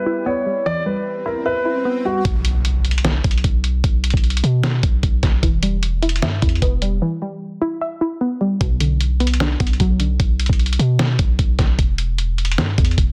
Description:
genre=hip hop, trap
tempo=151 BPM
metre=4/4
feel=half-time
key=unclear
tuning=A4 = 444 Hz
part: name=dark grand piano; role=melody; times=0.0-2.2 s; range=F#4 to D5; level=-23 LUFS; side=equal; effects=low-pass filter, tape echo
part: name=warbly dusty pluck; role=accompaniment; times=0.0-2.2, 5.4-10.2 s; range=B2 to E5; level=-25 LUFS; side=equal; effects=chorus, low-pass filter
part: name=warm analog pad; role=sustained chords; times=0.0-2.2 s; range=G3 to B4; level=-34 LUFS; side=equal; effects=chorus, low-pass filter
part: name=swell and impact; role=sound effects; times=0.6-3.8 s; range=none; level=-34 LUFS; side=equal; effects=none
part: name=warm 808-style bass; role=bass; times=2.2-13.1 s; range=E1 to B2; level=-21 LUFS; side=equal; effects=none
part: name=lo-fi sampler-style drum kit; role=drums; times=2.2-13.1 s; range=hi-hat, kick drum, snare drum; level=-21 LUFS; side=equal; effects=none
room=little or no reverb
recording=dense, heavily limited modern master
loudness=-19 LUFS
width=mono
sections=0.0-2.2 A section; 2.2-13.1 B section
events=swell 0.6-2.2; impact 2.2-3.8; break 7.0-8.6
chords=0.0 Em; 2.2 N.C.; 5.4 Em; 8.6 Bm; 11.8 Em

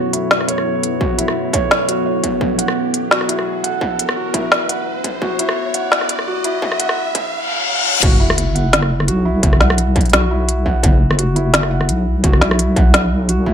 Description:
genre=half-time drum and bass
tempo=171 BPM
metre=4/4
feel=swing 55% on 16ths, half-time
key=F# minor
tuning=A4 = 440 Hz
part: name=deep dark ambient pad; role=sustained chords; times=0.0-8.0 s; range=F#3 to C#5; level=-24 LUFS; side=left 1 dB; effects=chorus, built-in reverb, sidechain pumping
part: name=felt-muted upright piano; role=arpeggios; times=0.0-13.5 s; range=E4 to F#5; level=-21 LUFS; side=right 1 dB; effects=low-pass filter, ping-pong delay
part: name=riser, reverse cymbal and sub drop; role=sound effects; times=0.8-9.4 s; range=none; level=-23 LUFS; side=left 1 dB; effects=none
part: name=organic electronic drum kit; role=drums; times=0.1-13.4 s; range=crash cymbal, hi-hat, rim click, snare drum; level=-17 LUFS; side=equal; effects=high-pass filter on snare, high-pass filter on hats, high-pass filter on cymbals, high-pass filter on room
part: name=electronic kick drum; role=drums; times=1.0-13.5 s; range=none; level=-17 LUFS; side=equal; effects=distortion
part: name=deep soft wobble bass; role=bass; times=8.0-13.5 s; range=F#1 to C#2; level=-16 LUFS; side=equal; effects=chorus
room=light reverb, digital ambience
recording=high-pass filter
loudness=-14 LUFS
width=side -8 dB against mid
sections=0.0-8.0 A section; 8.0-13.5 B section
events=build-up 0.0-8.0; filter sweep 0.0-8.0; riser 0.8-8.0; reverse cymbal 7.3-8.0; drop 8.0-13.5; impact 8.0-9.4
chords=0.0 F#m; 8.0 N.C.

